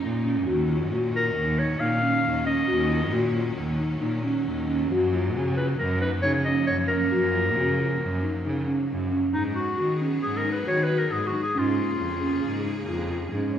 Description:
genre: contemporary instrumental, chamber music in an uneven meter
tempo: 135 BPM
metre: 5/4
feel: straight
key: G# dorian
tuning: A4 = 439 Hz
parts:
  - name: bright studio string section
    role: sustained chords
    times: 0.0-13.6 s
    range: C#3 to G#4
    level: -35 LUFS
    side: equal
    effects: none
  - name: buzzing marimba with soft mallets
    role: arpeggios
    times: 0.0-13.6 s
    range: C#4 to F#4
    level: -27 LUFS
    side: equal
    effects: none
  - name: warm cello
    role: bass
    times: 0.0-13.5 s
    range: D#2 to D#3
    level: -28 LUFS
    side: right 1 dB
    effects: none
  - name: clear clarinet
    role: melody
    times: 1.2-12.9 s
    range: D#4 to E#5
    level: -27 LUFS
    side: left 1 dB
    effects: none
  - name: vibraphone with medium mallets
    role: texture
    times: 9.8-13.6 s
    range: G#4 to C#5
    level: -42 LUFS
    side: left 8 dB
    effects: none
room: wet recital hall reverb, RT60 1.4 s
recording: recorded in a church or concert hall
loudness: -22 LUFS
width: side -9 dB against mid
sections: 0.0-9.3 A section; 9.3-13.6 B section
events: none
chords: 0.5 D#m7; 4.9 F#maj7; 9.3 G#m7; 11.6 A#m7

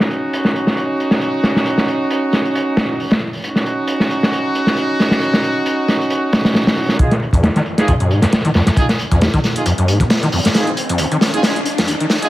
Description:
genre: breakbeat, breaks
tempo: 135 BPM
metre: 4/4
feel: swing 55% on 16ths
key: F phrygian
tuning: A4 = 440 Hz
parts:
  - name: clear brass ensemble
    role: stabs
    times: 0.0-12.3 s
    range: Db4 to Ab4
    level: -19 LUFS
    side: right 1 dB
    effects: low-pass filter, digital delay
  - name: crunchy breakbeat drum kit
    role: drums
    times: 0.0-12.2 s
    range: hi-hat, kick drum, snare drum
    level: -16 LUFS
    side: equal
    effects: low-pass filter on kick, low-pass filter on hats, low-pass filter on snare, low-pass filter on room
  - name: electronic hi-hat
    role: drums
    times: 7.0-12.3 s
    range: none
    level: -30 LUFS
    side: equal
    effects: none
  - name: riser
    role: sound effects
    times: 9.6-12.3 s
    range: none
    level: -25 LUFS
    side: left 1 dB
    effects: none
  - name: screaming distorted acid line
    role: riff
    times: 7.3-12.1 s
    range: Eb2 to Eb3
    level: -18 LUFS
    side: left 1 dB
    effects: distortion, chorus, cassette tape, digital delay
room: light reverb, studio reverb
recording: vinyl crackle, high-pass filter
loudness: -14 LUFS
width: side -16 dB against mid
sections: 0.0-7.0 A section; 7.0-12.3 B section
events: build-up 7.0-12.3; filter sweep on drum 7.0-12.3; filter sweep on acid bass 7.0-12.3; filter sweep 7.0-12.3; riser 9.6-12.3; drum fill 10.5-12.3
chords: 0.0 Ebm7; 7.0 Fm7

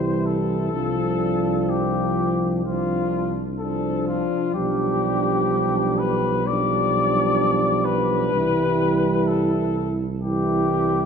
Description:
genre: classical, hymn-like piece for brass band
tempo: 63 BPM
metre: 4/4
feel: rubato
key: C major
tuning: A4 = 437 Hz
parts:
  - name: mellow cornet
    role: melody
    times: 0.0-11.1 s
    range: F4 to D5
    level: -24 LUFS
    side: left 6 dB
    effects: none
  - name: mellow French horn section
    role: second line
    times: 0.0-11.1 s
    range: D4 to E4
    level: -27 LUFS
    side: right 6 dB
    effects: none
  - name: mellow euphonium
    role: accompaniment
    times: 0.0-11.1 s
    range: F3 to G3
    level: -26 LUFS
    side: equal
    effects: none
  - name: warm trombone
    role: accompaniment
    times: 0.0-11.1 s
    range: E3 to F3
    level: -28 LUFS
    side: right 2 dB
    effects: none
  - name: mellow tuba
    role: bass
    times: 0.0-11.1 s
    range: B1 to C2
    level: -27 LUFS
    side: right 1 dB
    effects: none
room: wet scoring stage reverb, RT60 2.0 s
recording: minimal, uncompressed stereo recording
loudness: -19 LUFS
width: side -6 dB against mid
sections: 0.0-11.1 A section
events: none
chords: 0.0 C; 0.7 Dm7/C; 4.6 G7/B; 8.3 C

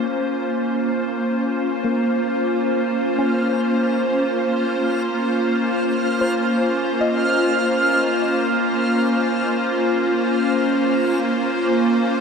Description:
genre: ambient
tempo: free time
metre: none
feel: none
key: Bb minor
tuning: A4 = 440 Hz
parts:
  - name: evolving wavetable pad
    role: sustained chords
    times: 0.0-12.2 s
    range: Bb3 to C5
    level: -19 LUFS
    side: equal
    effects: ensemble chorus, built-in reverb
  - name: organ-like drone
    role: drone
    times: 2.4-12.2 s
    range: Bb3 to F4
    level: -26 LUFS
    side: left 2 dB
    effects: ensemble chorus, built-in reverb
  - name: backwards swelling texture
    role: texture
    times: 2.0-12.2 s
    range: F6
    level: -27 LUFS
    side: right 2 dB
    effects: built-in reverb
  - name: soft round pluck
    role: arpeggios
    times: 1.8-10.1 s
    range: Bb3 to Eb5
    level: -29 LUFS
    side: left 1 dB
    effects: none
room: wet cathedral reverb, RT60 6.8 s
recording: dark, warm production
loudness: -18 LUFS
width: side -6 dB against mid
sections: 0.0-12.2 A section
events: none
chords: 0.0 Bbmadd9

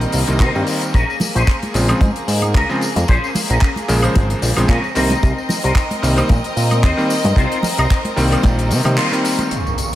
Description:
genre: nu-disco, nu disco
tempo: 112 BPM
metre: 4/4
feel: swing 55% on 16ths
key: unclear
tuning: A4 = 440 Hz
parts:
  - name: bright electric grand piano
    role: accompaniment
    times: 0.0-9.5 s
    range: Db3 to C5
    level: -22 LUFS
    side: equal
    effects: sidechain pumping, low-pass filter, diffuse ambient delay
  - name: warm symphonic violin section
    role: sustained chords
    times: 0.0-10.0 s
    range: Bb3 to Db6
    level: -24 LUFS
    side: right 1 dB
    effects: sidechain pumping, low-pass filter
  - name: fat analog bass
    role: bass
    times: 0.0-9.0 s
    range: Ab1 to C3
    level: -18 LUFS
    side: equal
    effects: none
  - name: damped 70s drum kit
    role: drums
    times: 0.0-10.0 s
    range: handclaps, hi-hat, tambourine, woodblock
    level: -24 LUFS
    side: left 2 dB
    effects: studio reverb
  - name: electric guitar with an envelope filter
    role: riff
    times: 0.4-9.4 s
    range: C4 to C5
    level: -24 LUFS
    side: left 2 dB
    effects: ensemble chorus, diffuse ambient delay
  - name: kick drum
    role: drums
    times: 0.4-8.6 s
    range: none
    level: -15 LUFS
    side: equal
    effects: studio reverb
  - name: congas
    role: percussion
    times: 1.2-9.5 s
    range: none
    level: -24 LUFS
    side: equal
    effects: none
  - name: impact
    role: sound effects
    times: 9.5-10.0 s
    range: none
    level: -22 LUFS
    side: equal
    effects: none
room: moderate lush hall reverb, RT60 1.8 s, small room reverb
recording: dreamy mix soaked in reverb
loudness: -14 LUFS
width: side -14 dB against mid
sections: 0.0-9.5 A section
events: band accent 9.0; impact 9.5-10.0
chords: 0.0 Cm7; 0.9 Bbm7; 5.0 Cm7

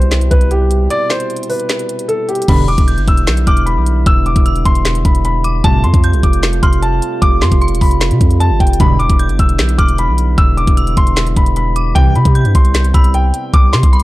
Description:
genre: hip hop, trap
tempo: 152 BPM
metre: 4/4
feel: half-time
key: E phrygian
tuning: A4 = 440 Hz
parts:
  - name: dark grand piano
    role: melody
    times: 0.0-14.0 s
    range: G4 to E6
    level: -18 LUFS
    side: left 1 dB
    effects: low-pass filter, tape echo
  - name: dark brass ensemble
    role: sustained chords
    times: 0.0-14.0 s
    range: B2 to F4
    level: -22 LUFS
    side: right 2 dB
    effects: stereo widening
  - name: long sustained 808-style bass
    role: bass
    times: 0.0-14.0 s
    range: E1 to C3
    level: -14 LUFS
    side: equal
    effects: none
  - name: trap drum kit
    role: drums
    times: 0.0-14.0 s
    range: crash cymbal, handclaps, hi-hat, kick drum, snare drum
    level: -13 LUFS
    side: equal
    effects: none
  - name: chorused polysynth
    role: stabs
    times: 2.5-2.7, 5.6-5.8, 8.8-9.0, 12.0-12.1 s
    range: E2 to E3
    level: -19 LUFS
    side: right 1 dB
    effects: tape echo
  - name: dark detuned synth bell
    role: second line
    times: 2.9-14.0 s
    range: B5 to G6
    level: -26 LUFS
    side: right 1 dB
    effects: chorus, tremolo, tape echo
room: digital ambience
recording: dark, warm production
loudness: -10 LUFS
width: side -17 dB against mid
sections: 0.0-2.5 A section; 2.5-14.0 B section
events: break 0.9-2.5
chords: 0.0 Cmaj7; 2.5 Em7; 5.6 Fadd9; 8.8 Em7; 12.0 Cmaj7

